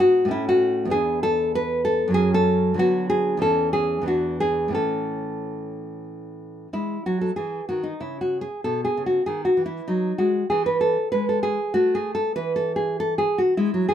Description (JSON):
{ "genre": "classical, baroque-style dance for nylon-string guitar", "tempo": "96 BPM", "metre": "3/4", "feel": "rubato", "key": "A major, E major from 6.7 s", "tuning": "A4 = 438 Hz", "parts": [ { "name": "nylon-string guitar", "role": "solo", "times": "0.0-13.9 s", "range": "E2 to B4", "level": "-20 LUFS", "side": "equal", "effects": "none" } ], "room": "light reverb", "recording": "minimal, uncompressed stereo recording", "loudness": "-20 LUFS", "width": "side -10 dB against mid", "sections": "0.0-6.7 A section; 6.7-13.9 A section", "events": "none", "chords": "0.3 A; 0.9 E5; 2.2 F#m; 2.8 Bm/D; 3.5 A/E; 4.1 E7; 4.8 A; 6.7 E; 8.0 N.C.; 8.6 B (rootless); 10.5 E; 11.8 N.C.; 12.4 E" }